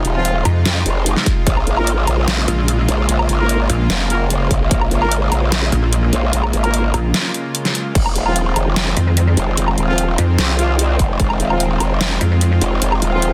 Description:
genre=heavy wobble dubstep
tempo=148 BPM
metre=4/4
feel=half-time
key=F minor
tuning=A4 = 440 Hz
part: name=supersaw pad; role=sustained chords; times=0.0-13.3 s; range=C3 to F4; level=-25 LUFS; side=equal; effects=sidechain pumping
part: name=growl bass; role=bass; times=0.0-13.3 s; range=Eb1 to F2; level=-20 LUFS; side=equal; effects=chorus, overdrive
part: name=dubstep drum kit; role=drums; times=0.0-13.3 s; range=crash cymbal, hi-hat, snare drum, woodblock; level=-23 LUFS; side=equal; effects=overdrive
part: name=mellow brass ensemble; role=stabs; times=0.2-13.3 s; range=F3 to Bb4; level=-26 LUFS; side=equal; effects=dub echo
part: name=pulsing pluck wobble bass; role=bass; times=0.5-12.6 s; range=Bb1 to F2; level=-17 LUFS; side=equal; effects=chorus, overdrive
part: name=electronic kick drum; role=drums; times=1.3-1.6, 4.5-4.8, 8.0, 11.0-11.3 s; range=none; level=-20 LUFS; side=equal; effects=overdrive
room=light reverb, digital ambience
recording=dense, heavily limited modern master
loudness=-16 LUFS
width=mono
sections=0.0-13.3 A section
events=none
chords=0.0 Fm7; 1.5 Bbm7; 8.0 Fm7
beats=0.25 0.66 1.06 | 1.47 1.87 2.28 2.68 | 3.09 3.49 3.90 4.30 | 4.71 5.12 5.52 5.93 | 6.33 6.74 7.14 7.55 | 7.95 8.36 8.76 9.17 | 9.57 9.98 10.38 10.79 | 11.20 11.60 12.01 12.41 | 12.82 13.22

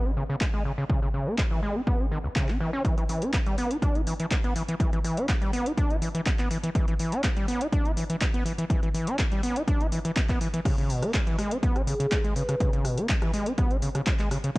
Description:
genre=acid house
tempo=123 BPM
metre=4/4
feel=straight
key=unclear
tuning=A4 = 440 Hz
part: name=overdriven acid bass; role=riff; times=0.0-14.6 s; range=C#2 to E4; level=-28 LUFS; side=equal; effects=distortion, cassette tape, analog delay
part: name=booming analog drum machine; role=drums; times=0.4-14.6 s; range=crash cymbal, handclaps, hi-hat, rim click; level=-34 LUFS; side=equal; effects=none
part: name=electronic kick drum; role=drums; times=0.4-14.6 s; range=none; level=-26 LUFS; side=equal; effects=overdrive
part: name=vibraphone with soft mallets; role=melody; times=11.9-12.6 s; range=G#4 to B4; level=-32 LUFS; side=equal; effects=analog delay
room=little or no reverb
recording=dry, gritty hardware recording, transformer saturation, cassette tape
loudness=-24 LUFS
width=side -22 dB against mid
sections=0.0-14.6 A section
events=none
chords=0.0 N.C.; 2.8 E7(no3); 10.7 C#7(no3)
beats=0.41 | 0.90 1.38 1.87 2.36 | 2.85 3.33 3.82 4.31 | 4.80 5.29 5.77 6.26 | 6.75 7.24 7.73 8.21 | 8.70 9.19 9.68 10.16 | 10.65 11.14 11.63 12.12 | 12.60 13.09 13.58 14.07 | 14.55

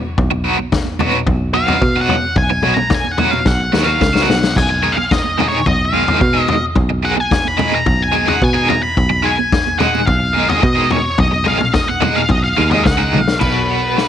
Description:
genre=psychedelic rock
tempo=109 BPM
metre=4/4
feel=straight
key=unclear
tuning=A4 = 440 Hz
part: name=picked electric bass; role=bass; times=0.0-14.1 s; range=B1 to B2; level=-19 LUFS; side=right 1 dB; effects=none
part: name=vintage drum kit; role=drums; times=0.2-14.1 s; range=crash cymbal, kick drum, snare drum, splash cymbal, toms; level=-18 LUFS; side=left 2 dB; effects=none
part: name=cranked stack guitar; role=riff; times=0.3-14.1 s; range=B2 to G#4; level=-18 LUFS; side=right 1 dB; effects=overdrive, tremolo
part: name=congas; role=percussion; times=0.6-13.3 s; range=none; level=-26 LUFS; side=right 14 dB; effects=none
part: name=octave-fuzz lead guitar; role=melody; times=1.5-14.1 s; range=B4 to B5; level=-18 LUFS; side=equal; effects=distortion, slapback echo
room=little or no reverb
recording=1960s-style stereo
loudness=-12 LUFS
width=side -10 dB against mid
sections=0.0-13.4 A section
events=lead electric guitar solo 0.0-13.4; drum fill 3.5-4.6, 13.1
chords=0.0 B; 4.6 G#m/B; 13.4 B5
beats=| 0.17 0.72 1.27 1.82 | 2.37 2.92 3.47 4.02 | 4.57 5.12 5.67 6.22 | 6.77 7.33 7.88 8.43 | 8.98 9.54 10.09 10.64 | 11.20 11.75 12.31 12.86 | 13.42 13.98

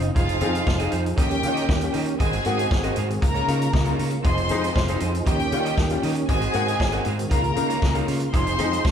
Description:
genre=disco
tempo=117 BPM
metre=4/4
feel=straight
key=unclear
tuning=A4 = 441 Hz
part: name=electric guitar at the edge of break-up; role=accompaniment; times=0.0-8.9 s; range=C4 to Ab5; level=-30 LUFS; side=right 4 dB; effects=none
part: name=warm baby grand piano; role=accompaniment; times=0.0-8.8 s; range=Ab2 to Ab4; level=-29 LUFS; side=left 4 dB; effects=none
part: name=percussive tonewheel organ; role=sustained chords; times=0.0-8.9 s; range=Db3 to Ab4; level=-29 LUFS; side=equal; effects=chorus vibrato, fast rotary speaker
part: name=fingered electric bass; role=bass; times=0.0-8.9 s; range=F1 to Eb3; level=-26 LUFS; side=equal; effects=none
part: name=vintage drum kit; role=drums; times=0.0-8.9 s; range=hi-hat, kick drum, snare drum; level=-25 LUFS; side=equal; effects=none
part: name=warm studio violin section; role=second line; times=0.2-8.9 s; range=F4 to C6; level=-27 LUFS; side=left 1 dB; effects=none
room=moderate large studio reverb, RT60 1.3 s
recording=band playing live in one room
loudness=-20 LUFS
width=side -8 dB against mid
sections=0.2-8.9 A section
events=none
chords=0.2 Fm7; 1.2 Eb7; 2.2 Ab7; 3.2 Db6; 4.2 Fm7; 5.3 Eb7; 6.3 Ab7; 7.3 Db6; 8.3 Fm7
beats=| 0.16 0.67 1.18 1.69 | 2.20 2.71 3.23 3.74 | 4.25 4.76 5.27 5.78 | 6.29 6.80 7.31 7.83 | 8.34 8.85

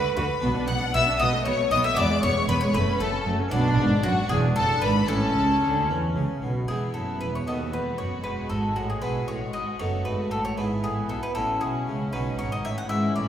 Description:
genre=classical, baroque-style concerto movement with solo episodes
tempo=77 BPM (dotted quarters)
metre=6/8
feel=straight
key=A major, E major from 6.7 s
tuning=A4 = 440 Hz
part: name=bowl-back mandolin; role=melody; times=0.0-13.3 s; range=D4 to F#5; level=-29 LUFS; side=left 1 dB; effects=none
part: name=rich chamber violin section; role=melody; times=0.0-13.3 s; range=D5 to F#6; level=-32 LUFS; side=left 5 dB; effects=none
part: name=rich studio violin section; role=second line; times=0.0-13.3 s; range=D4 to F#5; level=-31 LUFS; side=left 2 dB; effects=none
part: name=harpsichord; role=accompaniment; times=0.0-13.3 s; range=D#2 to A4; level=-33 LUFS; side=equal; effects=none
part: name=clear symphonic viola section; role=accompaniment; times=0.2-13.3 s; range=G#3 to F#4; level=-31 LUFS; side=equal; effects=none
part: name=dark chamber cello section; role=bass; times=0.2-13.2 s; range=D#2 to E3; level=-29 LUFS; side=right 1 dB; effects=none
part: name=rich symphonic double bass section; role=bass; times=0.2-13.2 s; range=E1 to E2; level=-30 LUFS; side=right 1 dB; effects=none
room=wet recital hall reverb, RT60 1.6 s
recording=recorded in a church or concert hall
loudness=-22 LUFS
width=side -10 dB against mid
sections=0.0-6.7 A section; 6.7-13.3 B section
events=none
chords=0.4 Bm; 1.2 B5; 2.0 E; 2.7 F#m; 3.5 Bm; 4.3 E7; 5.1 A; 6.7 E; 7.5 B7; 8.2 E; 9.8 B7/F#; 10.6 E/G#; 11.4 F#m7/A; 12.1 B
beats=| 0.43 1.20 | 1.97 2.75 | 3.52 4.31 | 5.09 5.89 | 6.68 7.47 | 8.25 9.03 | 9.80 10.58 | 11.35 12.13 | 12.90

